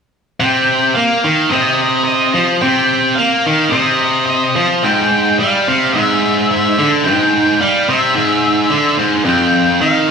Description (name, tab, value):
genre	rock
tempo	109 BPM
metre	4/4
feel	straight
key	C minor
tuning	A4 = 440 Hz
part	octave-fuzz lead guitar	melody	0.4-10.1 s	Eb5 to G5	-16 LUFS	left 1 dB	distortion
part	tight distorted guitar	riff	0.4-10.1 s	F2 to Bb3	-12 LUFS	equal	distortion
room	wet large studio reverb, RT60 1.4 s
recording	band playing live in one room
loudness	-11 LUFS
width	side -6 dB against mid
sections	0.4-10.1 A section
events	none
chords	0.4 Cm; 4.8 Abmaj7(#5, no3); 9.3 F7sus2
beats	| 0.41 0.97 1.52 2.08 | 2.63 3.18 3.74 4.29 | 4.84 5.39 5.95 6.50 | 7.05 7.60 8.15 8.71 | 9.26 9.81